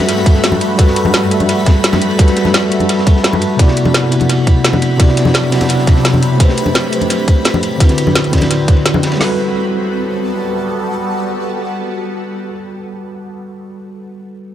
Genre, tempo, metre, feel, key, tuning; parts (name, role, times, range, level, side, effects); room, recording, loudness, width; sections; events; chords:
liquid drum and bass; 171 BPM; 4/4; straight; G major; A4 = 438 Hz
bell-like tine electric piano; accompaniment; 0.0-14.5 s; C3 to F#5; -16 LUFS; equal; medium stereo tremolo, low-pass filter, analog delay
shimmering ambient pad; sustained chords; 0.0-12.5 s; D2 to B5; -20 LUFS; equal; chorus, built-in reverb, phaser
crunchy breakbeat drum kit; drums; 0.0-9.2 s; ride cymbal, snare drum; -24 LUFS; equal; high-pass filter on cymbals, high-pass filter on snare, high-pass filter on room, tape echo
drum and bass drum kit; drums; 0.0-9.1 s; hi-hat, snare drum; -18 LUFS; equal; tape echo
congas; percussion; 0.0-9.0 s; -20 LUFS; left 3 dB; tape echo
drum and bass drum kit; drums; 0.3-9.3 s; hi-hat, kick drum, snare drum; -10 LUFS; equal
light reverb; echo-heavy mix; -11 LUFS; side -11 dB against mid
0.0-9.2 A section; 9.2-12.0 B section
filter sweep on tine electric piano 0.0-9.2
0.0 Gmaj9; 3.6 Cmaj9#11; 6.4 Am9; 7.8 D13; 9.2 Gmaj9